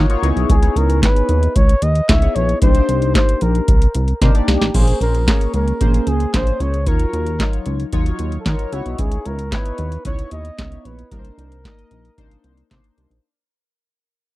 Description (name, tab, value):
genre	early-eighties boogie funk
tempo	113 BPM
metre	4/4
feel	straight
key	unclear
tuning	A4 = 440 Hz
part	chorused polysynth	accompaniment	0.0-13.1 s	Gb3 to Eb5	-24 LUFS	left 2 dB	phaser
part	chorused synth bass	bass	0.0-13.2 s	A1 to Eb3	-18 LUFS	equal	none
part	booming analog drum machine	drums	0.1-13.2 s	crash cymbal, handclaps, hi-hat, kick drum, snare drum	-16 LUFS	equal	none
part	trumpet with bucket mute	melody	0.5-13.0 s	Gb4 to Fb5	-24 LUFS	equal	none
room	little or no reverb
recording	dry, close 1970s-style studio recording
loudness	-14 LUFS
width	side -17 dB against mid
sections	0.0-4.7 A section; 4.7-13.2 B section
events	drum fill 4.2-4.7; fade-out 4.7-13.2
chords	0.2 Dbm9; 2.6 Cm9; 4.7 Bbm9; 6.9 Ebm9; 8.7 Dbm9; 11.1 Cm9